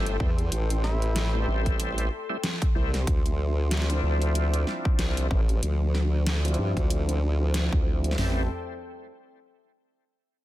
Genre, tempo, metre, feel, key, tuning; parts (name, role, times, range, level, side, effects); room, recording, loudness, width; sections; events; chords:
glitch hop; 94 BPM; 4/4; swing 57% on 16ths; A minor; A4 = 439 Hz
warm analog pad; sustained chords; 0.0-8.5 s; F3 to C6; -37 LUFS; left 3 dB; chorus, sidechain pumping
bright tonewheel organ; stabs; 0.0-8.4 s; F3 to E4; -33 LUFS; equal; overdrive, chorus vibrato, slow rotary speaker, sidechain pumping, low-pass filter, ping-pong delay
formant-sweep wobble bass; bass; 0.0-8.5 s; G1 to G2; -25 LUFS; equal; chorus, tube saturation
dubstep drum kit; drums; 0.1-8.2 s; hi-hat, snare drum; -32 LUFS; equal; overdrive
dubstep drum kit; drums; 0.2-8.4 s; hi-hat, kick drum, snare drum, toms; -26 LUFS; equal; overdrive
growling tenor saxophone; melody; 0.8-1.5 s; E4; -37 LUFS; equal; ping-pong delay
digital ambience; dense, heavily limited modern master; -23 LUFS; side -15 dB against mid
0.0-8.2 A section; 8.2-10.4 B section
filter sweep on tonewheel organ 0.0-8.2; filter sweep on analog synth pad 0.0-8.2
0.0 Am7; 3.1 Dm9; 8.2 Am7